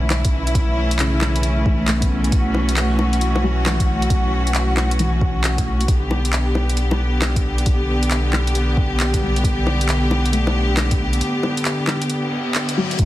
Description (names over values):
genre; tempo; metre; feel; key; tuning
future garage; 135 BPM; 4/4; swing 64% on 16ths; unclear; A4 = 439 Hz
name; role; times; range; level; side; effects
felt-muted upright piano; accompaniment; 0.0-5.9, 9.2-13.1 s; C#3 to B3; -27 LUFS; left 2 dB; sidechain pumping, tape echo
rich symphonic string section; sustained chords; 0.0-13.1 s; D3 to G4; -22 LUFS; equal; sidechain pumping
soft dub sub bass; bass; 0.0-13.1 s; B1; -20 LUFS; equal; sidechain pumping
garage drum kit; drums; 0.1-13.1 s; bongos, handclaps, hi-hat; -24 LUFS; left 1 dB; small room ambience
electronic kick drum; drums; 0.2-13.1 s; none; -19 LUFS; equal; small room ambience
reverse cymbal; sound effects; 12.2-13.0 s; none; -27 LUFS; left 5 dB; none
room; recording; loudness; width
light reverb; dense, heavily limited modern master, vinyl crackle; -16 LUFS; side -15 dB against mid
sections
0.0-13.1 A section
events
break 11.2-13.0; reverse cymbal 12.2-13.0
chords
0.0 Bm11; 5.9 G/B